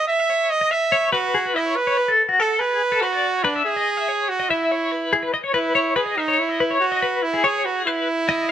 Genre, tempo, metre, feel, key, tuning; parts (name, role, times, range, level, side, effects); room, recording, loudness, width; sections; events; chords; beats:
rock; 285 BPM (eighths); 9/8; straight; E major; A4 = 439 Hz
bright trumpet; melody; 0.0-8.5 s; D4 to E5; -21 LUFS; right 3 dB
twelve-string electric guitar; arpeggios; 0.0-8.5 s; F#4 to E5; -21 LUFS; left 3 dB; tremolo
moderate stone room reverb, RT60 1.1 s; band playing live in one room; -18 LUFS; side -10 dB against mid
0.0-5.5 A section; 5.5-8.5 B section
0.0 Emaj7(no3); 1.8 Bm9; 3.6 Emaj7; 5.5 Emaj7(no3)
0.08 0.29 0.50 0.71 0.92 1.13 1.34 1.55 | 1.76 1.97 2.18 2.39 2.60 2.81 3.02 3.23 3.44 | 3.65 3.86 4.07 4.28 4.49 4.70 4.91 5.12 5.33 | 5.54 5.75 5.96 6.17 6.38 6.59 6.80 7.01 7.22 | 7.43 7.64 7.85 8.06 8.28 8.48